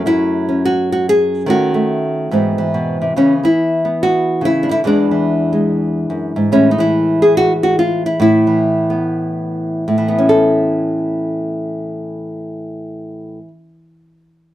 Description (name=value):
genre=solo jazz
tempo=143 BPM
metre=4/4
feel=swing 64% on 8ths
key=A major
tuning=A4 = 438 Hz
part: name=nylon-string guitar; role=solo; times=0.0-13.7 s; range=E2 to A4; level=-13 LUFS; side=equal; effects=none
room=light reverb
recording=band playing live in one room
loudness=-13 LUFS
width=side -13 dB against mid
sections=0.0-9.9 A section; 9.9-13.2 B section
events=none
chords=0.0 F#m9; 1.5 D#m7b5; 2.3 G#7alt; 3.1 C#m7; 4.8 E9; 6.5 Asus2; 9.9 Aadd9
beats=0.20 0.62 1.04 | 1.46 1.88 2.30 2.72 | 3.14 3.56 3.98 4.40 | 4.82 5.24 5.67 6.08 | 6.51 6.93 7.35 7.77 | 8.19 8.61 9.03 9.45 | 9.87 10.29 10.72 11.14 | 11.56 11.98 12.40 12.82